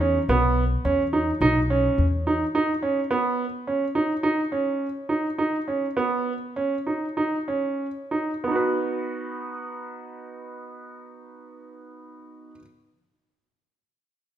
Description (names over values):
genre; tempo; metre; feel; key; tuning
contemporary instrumental, chamber music in an uneven meter; 92-107 BPM; 5/4; straight; B major; A4 = 439 Hz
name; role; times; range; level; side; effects
bright baby grand piano; arpeggios; 0.0-12.6 s; B3 to B4; -24 LUFS; right 2 dB; none
upright bass; bass; 0.0-2.4 s; B1 to E2; -24 LUFS; left 1 dB; none
room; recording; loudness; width
moderate recital hall reverb, RT60 1.4 s; minimal, uncompressed stereo recording; -22 LUFS; side -10 dB against mid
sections
0.0-8.4 A section; 8.4-11.7 B section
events
slowing down 3.7-8.4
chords
0.0 E5; 2.5 Badd9; 8.4 B